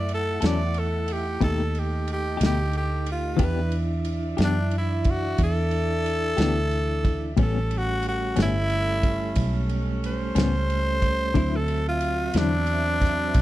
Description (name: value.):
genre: slow blues.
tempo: 60 BPM (dotted quarters).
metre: 12/8.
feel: straight.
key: unclear.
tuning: A4 = 441 Hz.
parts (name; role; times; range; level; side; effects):
growling tenor saxophone; melody; 0.0-13.4 s; D4 to D5; -27 LUFS; equal; slapback echo.
mellow tonewheel organ; sustained chords; 0.0-13.4 s; E3 to F#5; -33 LUFS; right 4 dB; slow rotary speaker.
warm saxophone section; sustained chords; 0.0-13.4 s; F#3 to F#5; -38 LUFS; equal; none.
vintage muted fingered electric bass; bass; 0.0-13.4 s; G1 to F#2; -26 LUFS; equal; none.
warm soul drum kit; drums; 0.1-13.4 s; kick drum, ride cymbal, snare drum; -28 LUFS; equal; none.
clean electric guitar; accompaniment; 0.4-12.6 s; A2 to A4; -26 LUFS; left 5 dB; tremolo.
room: studio ambience.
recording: none.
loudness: -22 LUFS.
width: side -15 dB against mid.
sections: 0.0-13.4 A section.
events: tenor saxophone solo 0.0-13.4.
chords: 0.0 F#m7; 1.4 B7alt; 3.4 Em7; 7.4 A9; 11.4 D9.